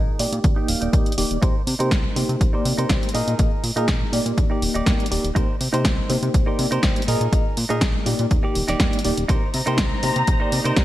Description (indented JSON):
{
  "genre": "filtered disco house",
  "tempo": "122 BPM",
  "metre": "4/4",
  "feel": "straight",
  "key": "C minor",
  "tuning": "A4 = 438 Hz",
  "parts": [
    { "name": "direct-recorded clean electric guitar", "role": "riff", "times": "0.0-10.8 s", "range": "Eb4 to F5", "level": "-30 LUFS", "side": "right 3 dB", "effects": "sidechain pumping, low-pass filter" },
    { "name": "fat analog bass", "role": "bass", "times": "0.0-10.8 s", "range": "Eb1 to C3", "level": "-25 LUFS", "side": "equal", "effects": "sidechain pumping, low-pass filter" },
    { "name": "reed electric piano", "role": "accompaniment", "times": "0.2-10.8 s", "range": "Bb3 to Eb5", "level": "-25 LUFS", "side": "equal", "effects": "overdrive, fast tremolo, phaser, sidechain pumping, low-pass filter" },
    { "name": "punchy analog drum machine", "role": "drums", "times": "0.2-10.8 s", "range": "hi-hat, snare drum", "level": "-26 LUFS", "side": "equal", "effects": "sidechain pumping on hats, gated reverb" },
    { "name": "tube shaker", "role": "percussion", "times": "0.2-10.8 s", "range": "none", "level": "barely audible", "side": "none", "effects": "none" },
    { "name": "electronic kick drum", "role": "drums", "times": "0.4-10.8 s", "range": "none", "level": "-20 LUFS", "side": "equal", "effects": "none" },
    { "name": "dark symphonic string section", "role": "sustained chords", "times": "9.3-10.8 s", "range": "Eb4 to Bb5", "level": "-26 LUFS", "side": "left 1 dB", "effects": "sidechain pumping, low-pass filter" }
  ],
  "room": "light reverb, digital ambience",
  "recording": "bright 1980s-style digital production",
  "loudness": "-18 LUFS",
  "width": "side -14 dB against mid",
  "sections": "0.0-10.8 A section",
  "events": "filter sweep 0.0-10.8; clean electric guitar fill 0.4-1.4",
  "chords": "0.4 Ebmaj7; 1.4 Cm7; 3.1 Bb7sus4; 4.4 Ebmaj7; 5.4 Cm7; 7.1 Bb7sus4; 8.3 Ebmaj7; 9.3 Cm7"
}